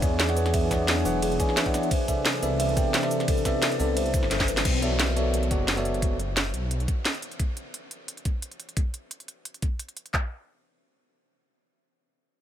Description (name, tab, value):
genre	liquid drum and bass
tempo	175 BPM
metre	4/4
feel	straight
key	B dorian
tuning	A4 = 445 Hz
part	bell-like tine electric piano	accompaniment	0.0-6.2 s	C3 to G#5	-30 LUFS	right 1 dB	dub echo
part	glassy FM pad	sustained chords	0.0-4.6 s	E3 to G#5	-33 LUFS	left 4 dB	ensemble chorus, built-in reverb, sidechain pumping
part	dark detuned saw bass	bass	0.0-6.9 s	E1 to E2	-28 LUFS	equal	none
part	drum and bass drum kit	drums	0.0-10.2 s	handclaps, kick drum	-26 LUFS	equal	none
part	drum and bass drum kit	drums	0.0-10.1 s	crash cymbal, hi-hat, ride cymbal, shaker, snare drum	-28 LUFS	equal	none
part	buzzing kalimba	arpeggios	0.2-4.6 s	G#4 to E5	-32 LUFS	equal	digital delay
part	downlifter	sound effects	4.7-7.4 s	none	-35 LUFS	left 2 dB	none
room	light reverb, digital ambience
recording	none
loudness	-23 LUFS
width	side -10 dB against mid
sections	0.0-4.7 A section; 4.7-10.1 B section; 10.1-12.4 C section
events	drop 0.0-4.7; drum fill 4.3-4.7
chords	0.0 E13; 1.9 Cmaj13; 4.7 Bm11; 7.4 N.C.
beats	0.20 | 0.54 0.88 1.22 1.57 | 1.91 2.25 2.60 2.94 | 3.28 3.62 3.97 4.31 | 4.65 5.00 5.34 5.68 | 6.02 6.37 6.71 7.05 | 7.39 7.74 8.08 8.42 | 8.77 9.11 9.45 9.79 | 10.14